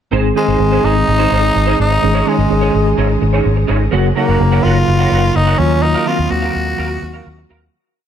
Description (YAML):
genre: pop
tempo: 126 BPM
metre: 4/4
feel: straight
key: Ab mixolydian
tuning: A4 = 441 Hz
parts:
  - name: mellow tine electric piano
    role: accompaniment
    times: 0.1-7.8 s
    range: Db3 to F5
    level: -17 LUFS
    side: equal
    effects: medium stereo tremolo, shimmer reverb
  - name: electric guitar through a small old amp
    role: riff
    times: 0.1-7.7 s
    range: Eb4 to Gb5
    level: -21 LUFS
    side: right 4 dB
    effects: ensemble chorus, shimmer reverb, ping-pong delay
  - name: vintage muted fingered electric bass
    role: bass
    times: 0.1-7.7 s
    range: Gb1 to Eb2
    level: -16 LUFS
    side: equal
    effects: none
  - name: raspy tenor saxophone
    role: melody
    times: 0.4-7.5 s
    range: Ab3 to Gb4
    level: -17 LUFS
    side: equal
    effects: shimmer reverb
room: light reverb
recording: none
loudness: -11 LUFS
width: side -9 dB against mid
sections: 0.1-7.7 verse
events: fade-out 5.8-7.7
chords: 0.1 Ab; 2.0 Dbsus2/Ab; 3.9 Gb; 5.6 Ebmadd9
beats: | 0.12 0.60 1.07 1.55 | 2.03 2.50 2.98 3.46 | 3.93 4.41 4.88 5.36 | 5.84 6.31 6.79 7.27